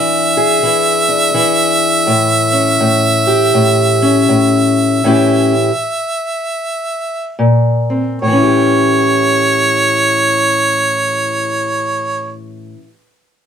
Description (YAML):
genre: acoustic country blues, solo or duo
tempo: 71-83 BPM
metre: 4/4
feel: swing 62% on 8ths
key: A mixolydian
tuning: A4 = 440 Hz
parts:
  - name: bright harmonica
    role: melody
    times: 0.0-12.3 s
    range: C#5 to E5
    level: -14 LUFS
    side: right 2 dB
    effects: none
  - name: fingerpicked steel-string acoustic guitar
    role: accompaniment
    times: 0.0-12.9 s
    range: A2 to G#4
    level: -14 LUFS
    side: left 2 dB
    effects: none
room: moderate small room reverb, RT60 0.5 s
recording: none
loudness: -11 LUFS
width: side -7 dB against mid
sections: 0.0-8.2 A section; 8.2-11.6 B section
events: slowing down 2.1-8.2; stop 5.0-7.4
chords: 0.0 E7; 2.1 A7; 7.4 Bbsus2; 8.2 A7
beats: 0.64 1.36 | 2.08 2.81 3.54 4.28 | 5.03 5.80 6.59 7.39 | 8.22 9.06 9.90 10.74